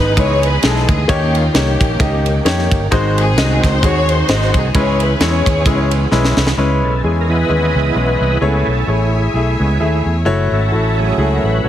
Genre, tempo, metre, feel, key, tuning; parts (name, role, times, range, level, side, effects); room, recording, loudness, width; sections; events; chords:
uptempo gospel; 131 BPM; 4/4; swing 56% on 8ths; C# minor; A4 = 440 Hz
warm studio string section; melody; 0.0-6.1 s; A#3 to C#5; -19 LUFS; left 1 dB
clear concert grand piano; accompaniment; 0.0-11.7 s; G#2 to E5; -19 LUFS; left 2 dB
overdriven tonewheel organ; sustained chords; 0.0-11.7 s; D#3 to D#5; -21 LUFS; right 2 dB; slow rotary speaker, chorus vibrato
fingered electric bass; bass; 0.0-11.7 s; F#1 to E#2; -16 LUFS; equal
tight funk drum kit; drums; 0.2-6.6 s; kick drum, ride cymbal, snare drum; -18 LUFS; equal
rich studio string section; sustained chords; 6.6-11.7 s; B4 to G#5; -28 LUFS; left 4 dB
light reverb, studio reverb; heavily compressed radio sound, multiband compression; -12 LUFS; side -11 dB against mid
0.0-6.6 A section; 6.6-11.7 B section
drum fill 6.1-6.6; tonewheel organ solo 6.6-11.7
0.0 Emaj7; 1.1 D#7; 2.9 G#7; 4.7 C#m7; 8.4 Amaj7; 10.3 F#m7